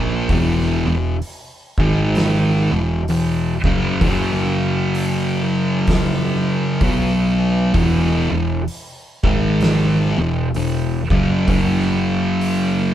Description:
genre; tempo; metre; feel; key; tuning
stoner and doom metal; 64 BPM; 4/4; swing 60% on 8ths; unclear; A4 = 442 Hz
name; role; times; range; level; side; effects
thick fuzz guitar; riff; 0.0-12.9 s; E2 to B3; -17 LUFS; equal; distortion
picked electric bass; bass; 0.0-12.9 s; E1 to B1; -23 LUFS; equal; overdrive
oversized low-tuned drum kit; drums; 0.3-12.7 s; hi-hat, kick drum, snare drum; -23 LUFS; equal; none
room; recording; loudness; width
light reverb; band playing live in one room; -16 LUFS; side -11 dB against mid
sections
0.0-12.9 A section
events
none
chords
0.3 E5; 1.7 G#5; 2.6 E5; 4.0 F#5; 6.8 B5; 7.8 E5; 9.2 G#5; 10.1 E5; 11.5 F#5

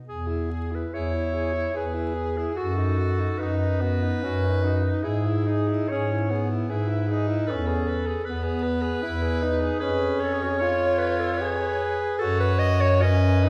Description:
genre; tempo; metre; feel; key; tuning
classical, lyrical piece for single-reed quartet; 66-79 BPM; 3/4; rubato; E major; A4 = 440 Hz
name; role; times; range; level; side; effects
bright clarinet; melody; 0.1-13.5 s; F#4 to D#5; -31 LUFS; equal; none
bright alto saxophone; second line; 0.1-13.5 s; D#4 to C#5; -34 LUFS; equal; none
mellow bass clarinet; bass; 0.1-13.5 s; E2 to G#2; -28 LUFS; equal; none
warm tenor saxophone; accompaniment; 0.9-13.5 s; B3 to G#4; -32 LUFS; equal; none
room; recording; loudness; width
wet recital hall reverb, RT60 1.4 s; heard from further back in the room, vinyl crackle; -25 LUFS; mono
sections
0.1-13.5 A section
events
none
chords
0.1 E; 2.6 B7/F#; 5.0 E/G#; 7.5 E; 9.8 C#7/E#; 12.2 F#5

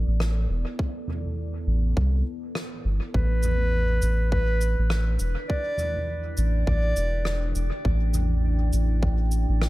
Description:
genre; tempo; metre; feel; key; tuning
ambient dub; 102 BPM; 4/4; swing 59% on 16ths; unclear; A4 = 440 Hz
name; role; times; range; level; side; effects
deep dark ambient pad; sustained chords; 0.0-9.7 s; B3 to G5; -37 LUFS; left 2 dB; chorus, built-in reverb
soft dub sub bass; bass; 0.0-9.7 s; E1 to C2; -22 LUFS; equal; none
soft-mallet drum kit; drums; 0.2-9.7 s; cabasa, rim click, toms; -33 LUFS; right 1 dB; dub echo
electronic kick drum; drums; 0.8-9.2 s; none; -28 LUFS; equal; overdrive
clear clarinet; melody; 3.1-7.5 s; B4 to D5; -30 LUFS; equal; dub echo
room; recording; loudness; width
small room ambience; echo-heavy mix; -22 LUFS; side -18 dB against mid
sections
0.0-9.7 A section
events
fade-in on ambient pad 0.0-9.7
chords
0.0 A7sus2; 3.1 G

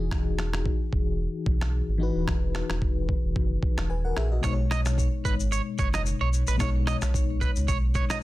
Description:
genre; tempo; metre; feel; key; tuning
afrobeats; 111 BPM; 4/4; swing 55% on 16ths; B major; A4 = 440 Hz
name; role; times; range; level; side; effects
FM electric piano with tremolo; accompaniment; 0.0-8.2 s; B2 to G#5; -31 LUFS; left 5 dB; none
sub bass with octave; bass; 0.0-8.0 s; D#1 to C#2; -27 LUFS; equal; none
dusty soul sampler-style drum kit; drums; 0.1-8.2 s; finger snaps, kick drum, rim click, shaker; -27 LUFS; equal; soft clipping on snare
electric guitar at the edge of break-up; riff; 4.4-8.2 s; B4 to D#5; -32 LUFS; right 7 dB; digital delay
room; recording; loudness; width
little or no reverb; dense, heavily limited modern master; -24 LUFS; side -17 dB against mid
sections
0.0-8.2 A section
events
break 0.0-4.4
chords
0.0 Emaj9; 4.4 B69

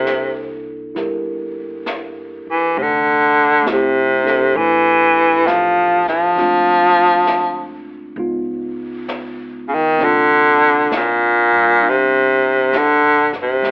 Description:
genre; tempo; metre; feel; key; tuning
jazz ballad; 66 BPM; 4/4; swing 67% on 8ths; unclear; A4 = 444 Hz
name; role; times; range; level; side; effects
bright baritone saxophone; melody; 0.0-13.7 s; Bb2 to F3; -12 LUFS; equal; none
mellow tine electric piano; accompaniment; 0.0-13.6 s; Ab3 to Bb4; -24 LUFS; right 1 dB; none
upright bass; bass; 0.0-13.7 s; F1 to G2; -37 LUFS; equal; none
jazz brush drum kit; drums; 0.1-13.7 s; brushed snare drum, hi-hat, snare drum; -28 LUFS; left 1 dB; none
room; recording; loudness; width
light reverb; telephone sound; -12 LUFS; side -26 dB against mid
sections
0.0-13.7 A section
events
none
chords
0.0 C13; 2.8 Fmaj9; 6.4 Dm7b5; 8.2 C#9; 10.0 C9sus4

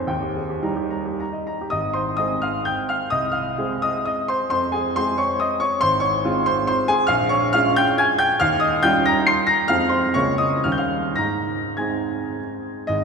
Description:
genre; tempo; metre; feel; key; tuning
classical, romantic triple-time dance for piano with dotted rhythms; 97-148 BPM; 3/4; rubato; Ab major; A4 = 440 Hz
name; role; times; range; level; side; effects
warm baby grand piano; solo; 0.0-13.0 s; Ab1 to C7; -18 LUFS; equal; none
room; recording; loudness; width
wet cathedral reverb, RT60 4.1 s; recorded in a church or concert hall; -18 LUFS; side -5 dB against mid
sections
0.0-1.7 A section; 1.7-12.9 B section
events
none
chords
0.1 Eb; 1.7 Ab; 3.1 Ab/C; 4.5 Fm; 5.8 Fm/Ab; 7.1 Bbm7; 8.4 Eb13; 9.7 Fm; 10.2 Bbm7/Db; 10.7 Eb9; 11.2 Ab

